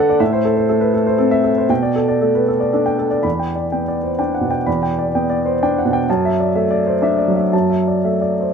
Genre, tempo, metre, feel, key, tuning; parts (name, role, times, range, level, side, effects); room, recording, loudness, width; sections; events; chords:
neoclassical minimalist piano; 114-130 BPM; 3/4; rubato; E minor; A4 = 440 Hz
warm upright piano; solo; 0.0-8.5 s; E2 to B5; -15 LUFS; equal
light reverb; close, detailed microphones; -15 LUFS; side -6 dB against mid
0.0-3.2 A section; 3.2-8.5 B section
0.2 Am; 1.7 Gadd9/B; 3.2 Em7; 6.1 Dadd9/F#